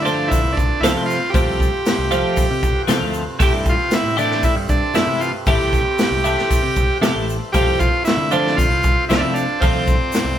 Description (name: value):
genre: psychedelic rock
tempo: 116 BPM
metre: 4/4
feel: straight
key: unclear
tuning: A4 = 440 Hz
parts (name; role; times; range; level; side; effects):
- combo organ; melody; 0.0-10.4 s; C4 to G4; -20 LUFS; right 1 dB; none
- pedal harmonium; sustained chords; 0.0-10.4 s; F4 to F5; -32 LUFS; right 3 dB; none
- picked electric bass; bass; 0.0-10.4 s; A1 to D3; -25 LUFS; equal; none
- tanpura; drone; 0.0-10.4 s; C2 to C3; -31 LUFS; left 1 dB; none
- twelve-string electric guitar; riff; 0.1-10.0 s; E3 to G4; -21 LUFS; equal; rotary speaker
- egg shaker; percussion; 0.1-10.2 s; none; -36 LUFS; left 7 dB; none
- vintage drum kit; drums; 0.3-10.3 s; hi-hat, kick drum, snare drum; -20 LUFS; equal; none
room: moderate studio reverb, RT60 0.7 s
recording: band playing live in one room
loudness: -15 LUFS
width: side -10 dB against mid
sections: 0.0-10.4 A section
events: none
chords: 0.0 F/C; 3.4 C6; 7.5 F/C